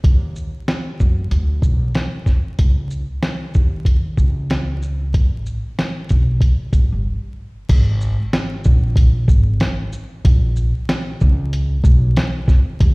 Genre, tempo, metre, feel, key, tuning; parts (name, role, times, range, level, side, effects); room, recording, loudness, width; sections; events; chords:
hip hop, jazz-hop; 94 BPM; 4/4; swing 58% on 16ths; G# minor; A4 = 440 Hz
upright bass; bass; 0.0-12.9 s; G1 to F#2; -18 LUFS; equal
lo-fi sampler-style drum kit; drums; 0.0-12.9 s; crash cymbal, hi-hat, kick drum, shaker, snare drum; -15 LUFS; equal
digital ambience; played on a big sound system in a bare room, large studio reverb, vinyl crackle; -15 LUFS; side -30 dB against mid
0.0-7.7 A section; 7.7-12.9 B section
break 7.1-7.7